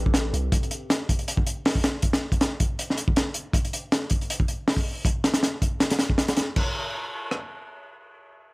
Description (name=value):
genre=drum and bass, jungle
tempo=159 BPM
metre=4/4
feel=swing 54% on 16ths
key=A minor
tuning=A4 = 444 Hz
part: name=long sustained 808-style bass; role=bass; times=0.0-0.5 s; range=A1 to C2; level=-26 LUFS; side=equal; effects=none
part: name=crunchy breakbeat drum kit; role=drums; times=0.1-7.4 s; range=crash cymbal, hi-hat, kick drum, rim click, snare drum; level=-23 LUFS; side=equal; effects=none
room=small room ambience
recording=dry, gritty hardware recording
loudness=-22 LUFS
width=side -27 dB against mid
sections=0.0-6.6 A section; 6.6-8.5 B section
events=none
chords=none